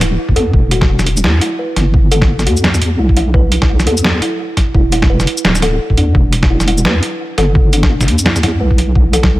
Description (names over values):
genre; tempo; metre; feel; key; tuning
half-time drum and bass; 171 BPM; 4/4; swing 58% on 16ths, half-time; E minor; A4 = 440 Hz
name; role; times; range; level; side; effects
kalimba; arpeggios; 0.0-9.3 s; D4 to B4; -19 LUFS; equal; digital delay
deep soft wobble bass; bass; 0.0-9.4 s; D1 to E2; -14 LUFS; equal; chorus, tube saturation
boom bap sampler-style drum kit; drums; 0.0-9.3 s; hi-hat, shaker, snare drum; -16 LUFS; equal; none
electronic kick drum; drums; 0.3-9.3 s; none; -13 LUFS; equal; none
room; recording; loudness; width
digital ambience; none; -10 LUFS; side -17 dB against mid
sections
0.0-9.4 A section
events
none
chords
0.0 Em